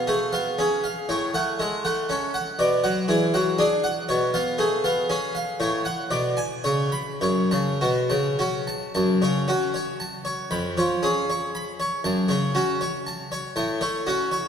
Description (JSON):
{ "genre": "classical, baroque-style suite movement for harpsichord", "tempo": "118 BPM", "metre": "3/4", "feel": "rubato", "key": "F# minor", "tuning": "A4 = 443 Hz", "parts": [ { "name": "harpsichord", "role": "solo", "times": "0.0-14.5 s", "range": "E#2 to B5", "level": "-22 LUFS", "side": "equal", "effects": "none" } ], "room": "wet church reverb, RT60 3.2 s", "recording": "none", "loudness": "-22 LUFS", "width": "side -8 dB against mid", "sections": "0.0-8.9 A section; 8.9-14.5 B section", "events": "none", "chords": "0.0 C#7; 1.1 F#m/A; 2.6 G#m7b5/B; 4.1 C#7/B; 5.6 F#m/A; 6.1 G#dim/B; 6.6 Bsus2/C#; 7.2 F#m; 10.5 C#7/E#; 12.0 F#m; 13.6 F#m/A" }